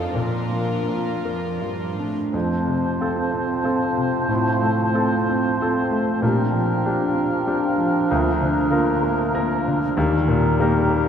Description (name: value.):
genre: classical.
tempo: 80-98 BPM.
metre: 3/4.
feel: rubato.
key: F major.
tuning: A4 = 439 Hz.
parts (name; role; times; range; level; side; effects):
clear concert grand piano; melody; 0.0-11.1 s; D2 to Bb4; -21 LUFS; equal; none.
dark studio violin section; melody; 0.0-1.6 s; Bb4 to C5; -34 LUFS; left 5 dB; none.
warm symphonic violin section; second line; 0.0-2.1 s; F4 to Bb4; -32 LUFS; left 1 dB; none.
dark studio viola section; accompaniment; 0.0-2.1 s; F3 to Eb4; -34 LUFS; right 2 dB; none.
rich symphonic cello section; bass; 0.0-2.3 s; F2 to Bb2; -30 LUFS; right 3 dB; none.
mellow hollow large flute ensemble; second line; 2.3-11.1 s; G5 to Bb5; -30 LUFS; left 1 dB; none.
warm French horn section; sustained chords; 2.3-10.2 s; Bb3 to A4; -33 LUFS; left 3 dB; none.
mellow clarinet; second line; 2.4-11.1 s; C4 to Eb4; -27 LUFS; equal; none.
warm oboe; second line; 2.4-11.1 s; Bb4 to C5; -28 LUFS; right 1 dB; none.
dark bassoon; accompaniment; 2.4-11.1 s; F3 to G3; -28 LUFS; right 1 dB; none.
room: wet church reverb, RT60 2.6 s.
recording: none.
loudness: -19 LUFS.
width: side -8 dB against mid.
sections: 0.0-2.3 A section; 2.3-11.1 B section.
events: none.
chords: 0.2 Bb; 2.3 F; 4.3 F/A; 6.2 Bb6; 8.1 Bb/D; 10.0 Eb.